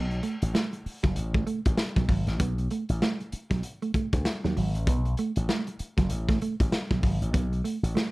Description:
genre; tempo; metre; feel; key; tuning
funk; 97 BPM; 4/4; swing 60% on 16ths; unclear; A4 = 438 Hz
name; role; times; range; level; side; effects
mellow electric guitar; riff; 0.0-8.1 s; F#3 to B3; -31 LUFS; right 4 dB; none
slap bass with an envelope filter; bass; 0.0-7.9 s; F#1 to D#2; -28 LUFS; equal; none
crunchy breakbeat drum kit; drums; 0.1-8.1 s; hi-hat, kick drum, snare drum; -28 LUFS; equal; none
room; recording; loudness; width
light reverb; none; -25 LUFS; side -20 dB against mid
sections
0.0-8.1 A section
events
none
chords
0.0 B5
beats
0.54 1.16 1.78 | 2.40 3.02 3.63 4.25 | 4.87 5.48 6.10 6.72 | 7.33 7.95

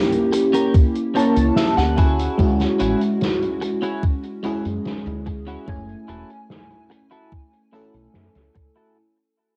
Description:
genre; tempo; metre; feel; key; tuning
vaporwave; 73 BPM; 4/4; straight; F# minor; A4 = 439 Hz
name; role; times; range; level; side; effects
FM electric piano with soft pad layer; accompaniment; 0.0-9.0 s; G#3 to A5; -23 LUFS; equal; analog chorus, cassette tape, tape echo
soft-mallet drum kit; drums; 0.1-8.9 s; hi-hat, snare drum; -29 LUFS; equal; low-pass filter on hats, cassette tape, low-pass filter on snare, low-pass filter on room
clean electric guitar; riff; 0.3-9.0 s; C#4 to F#5; -28 LUFS; equal; analog chorus, low-pass filter, tape echo
electronic kick drum; drums; 0.7-8.7 s; none; -20 LUFS; equal; cassette tape
woody fretless electric bass; bass; 1.4-8.7 s; E1 to F#2; -27 LUFS; equal; tube saturation, ensemble chorus
room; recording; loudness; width
moderate studio reverb, RT60 0.6 s; home recording on cassette; -20 LUFS; mono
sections
0.0-9.0 A section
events
fade-out 0.0-9.0; clean electric guitar fill 0.7-2.4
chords
0.0 A7b9; 2.0 Dmaj9#11; 5.7 F#m7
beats
0.74 1.56 | 2.39 3.21 4.03 4.85 | 5.67 6.50 7.32 8.14

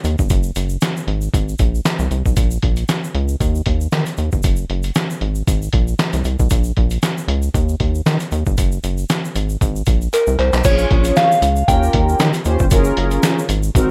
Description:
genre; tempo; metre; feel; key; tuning
early-eighties boogie funk; 116 BPM; 4/4; swing 56% on 16ths; unclear; A4 = 439 Hz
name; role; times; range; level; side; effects
rubbery square bass; bass; 0.0-13.9 s; Gb1 to Eb3; -21 LUFS; equal; none
lo-fi sampler-style drum kit; drums; 0.0-13.9 s; crash cymbal, handclaps, hi-hat, kick drum, snare drum; -20 LUFS; equal; gated reverb
tube shaker; percussion; 0.0-13.9 s; none; -36 LUFS; equal; none
soft synth bell; melody; 10.1-12.2 s; Bb4 to G5; -19 LUFS; equal; chorus, slapback echo
mellow synth brass; accompaniment; 10.6-13.9 s; C4 to Db5; -23 LUFS; equal; chorus
room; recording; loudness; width
little or no reverb; none; -17 LUFS; mono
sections
0.0-10.6 A section; 10.6-13.9 B section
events
drum fill 10.1-10.6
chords
0.3 Gbsus2; 1.3 Ab; 2.4 Bbm; 3.4 Eb; 4.4 Gbsus2; 5.5 Ab; 6.5 Bbm; 7.5 Eb; 8.6 Gbsus2; 9.6 Ab; 10.6 Bbm7; 11.7 Eb7; 12.7 Gbmaj9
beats
| 0.30 0.82 1.34 1.85 | 2.37 2.89 3.41 3.92 | 4.44 4.96 5.48 5.99 | 6.51 7.03 7.54 8.06 | 8.58 9.10 9.61 10.13 | 10.65 11.17 11.68 12.20 | 12.72 13.23 13.75

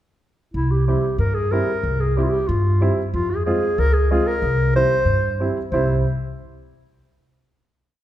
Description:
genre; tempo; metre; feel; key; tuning
klezmer; 93 BPM; 2/4; straight; C phrygian dominant; A4 = 440 Hz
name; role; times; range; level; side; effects
mellow clarinet; melody; 0.5-6.0 s; E4 to C5; -22 LUFS; equal; none
upright bass; bass; 0.5-6.0 s; C2 to G2; -20 LUFS; equal; none
clear upright piano; accompaniment; 0.9-6.0 s; G3 to F4; -25 LUFS; right 3 dB; none
room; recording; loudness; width
wet recital hall reverb, RT60 1.5 s; heard from further back in the room; -17 LUFS; side -12 dB against mid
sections
0.5-5.7 A section; 5.7-7.0 final chord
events
none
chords
0.5 C; 3.1 Fm; 4.4 C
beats
| 0.55 1.19 | 1.84 2.48 | 3.13 3.78 | 4.43 5.07 | 5.72

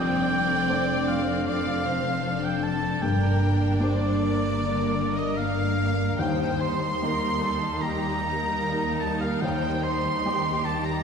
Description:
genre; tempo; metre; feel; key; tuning
cinematic, emotional film score for orchestra; 76 BPM; 4/4; rubato; G minor; A4 = 441 Hz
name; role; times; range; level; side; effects
rich studio violin section; melody; 0.0-11.0 s; D5 to C6; -35 LUFS; left 4 dB; none
clear oboe; second line; 0.0-11.0 s; D5 to C6; -29 LUFS; right 2 dB; none
warm studio violin section; second line; 0.0-11.0 s; G4 to D5; -34 LUFS; left 3 dB; none
felt-muted upright piano; accompaniment; 0.0-11.0 s; Eb2 to C5; -34 LUFS; left 2 dB; none
warm studio viola section; accompaniment; 0.0-11.0 s; G3 to Eb4; -31 LUFS; right 2 dB; none
concert harp; arpeggios; 0.0-11.0 s; F2 to Bb4; -31 LUFS; left 6 dB; none
rich studio cello section; bass; 0.0-11.0 s; Eb2 to G2; -31 LUFS; right 2 dB; none
warm studio double bass section; bass; 0.0-11.0 s; F1 to Eb2; -33 LUFS; right 3 dB; none
room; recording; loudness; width
wet scoring stage reverb, RT60 1.5 s; heard from further back in the room; -23 LUFS; side -6 dB against mid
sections
0.0-11.0 A section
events
none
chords
0.0 Dm7/F; 3.0 Gm; 6.2 Eb; 9.4 Cm/Eb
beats
0.69 1.46 2.24 | 3.02 3.80 4.58 5.37 | 6.19 7.02 7.81 8.60 | 9.42 10.26

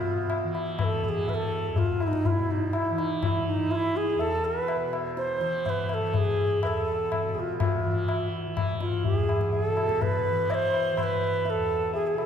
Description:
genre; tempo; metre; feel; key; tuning
indian classical, Hindustani; 124 BPM; 4/4; straight; E raga bhairav; A4 = 440 Hz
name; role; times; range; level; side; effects
bright reedy bansuri; melody; 0.0-12.3 s; D#4 to D#5; -27 LUFS; right 1 dB; none
tanpura; drone; 0.0-12.3 s; E2 to E3; -34 LUFS; right 1 dB; none
tabla; percussion; 0.3-12.3 s; none; -28 LUFS; left 2 dB; none
room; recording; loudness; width
wet scoring stage reverb, RT60 2.0 s; recorded in a church or concert hall; -24 LUFS; side -8 dB against mid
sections
0.0-12.3 A section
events
none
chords
none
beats
0.30 0.79 1.27 | 1.76 2.25 2.74 3.22 | 3.71 4.20 4.68 5.17 | 5.66 6.14 6.62 7.11 | 7.59 8.08 8.56 9.05 | 9.53 10.01 10.49 10.98 | 11.46 11.94

